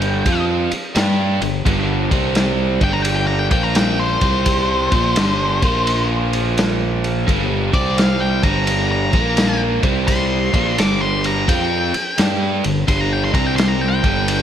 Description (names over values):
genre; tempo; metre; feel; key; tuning
blues rock power trio and southern rock; 86 BPM; 4/4; swing 65% on 8ths; G minor; A4 = 439 Hz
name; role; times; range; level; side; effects
octave-fuzz lead guitar; melody; 0.0-14.4 s; C5 to D6; -22 LUFS; left 2 dB; distortion
biting overdriven guitar; riff; 0.0-14.4 s; G2 to G4; -20 LUFS; right 1 dB; slapback echo
fuzz fingered electric bass; bass; 0.0-14.4 s; G1 to G2; -22 LUFS; equal; overdrive
vintage drum kit; drums; 0.0-14.4 s; kick drum, ride cymbal, snare drum; -20 LUFS; equal; none
room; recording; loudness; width
moderate lush hall reverb, RT60 2.3 s; big arena sound; -15 LUFS; side -9 dB against mid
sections
0.0-14.4 A section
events
lead electric guitar solo 0.0-14.4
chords
0.0 G5; 2.0 C5; 2.7 G5; 3.4 Bb5; 4.1 C5; 4.8 Gm; 5.5 Bb5; 7.3 G5; 7.6 C5; 8.3 Gm; 9.0 Bb5; 9.7 C5; 10.4 Gm; 13.2 C5